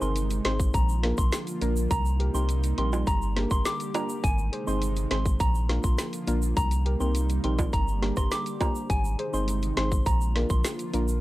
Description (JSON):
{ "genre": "dancehall", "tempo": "103 BPM", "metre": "4/4", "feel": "straight", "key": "C minor", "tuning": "A4 = 442 Hz", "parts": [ { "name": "soft synth bell", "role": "melody", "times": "0.0-10.6 s", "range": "Ab5 to D6", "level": "-33 LUFS", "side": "equal", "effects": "chorus, phaser, tape echo" }, { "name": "soft round pluck", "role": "accompaniment", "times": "0.0-11.1 s", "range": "Bb3 to C5", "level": "-33 LUFS", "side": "left 2 dB", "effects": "chorus" }, { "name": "airy breathy pad", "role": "sustained chords", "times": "0.0-11.2 s", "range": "C3 to G4", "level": "-35 LUFS", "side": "right 2 dB", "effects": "chorus, sidechain pumping" }, { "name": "saturated sub bass", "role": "bass", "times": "0.0-11.2 s", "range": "G1 to C2", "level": "-27 LUFS", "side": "equal", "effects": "none" }, { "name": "tube shaker and timbales", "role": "percussion", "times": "0.0-11.2 s", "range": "none", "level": "-38 LUFS", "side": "right 4 dB", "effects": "none" }, { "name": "island pop drum kit", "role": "drums", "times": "0.2-11.1 s", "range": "hi-hat, kick drum, rim click, snare drum", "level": "-27 LUFS", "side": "equal", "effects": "none" } ], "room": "little or no reverb", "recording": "dry, gritty hardware recording", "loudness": "-24 LUFS", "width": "side -17 dB against mid", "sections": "0.0-11.2 A section", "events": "none", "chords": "0.0 Ab; 0.7 Bb; 1.9 Cm7; 3.1 Gm; 4.2 Ab; 5.4 Bb; 6.6 Cm7; 7.7 Gm; 8.9 Ab; 10.1 Bb" }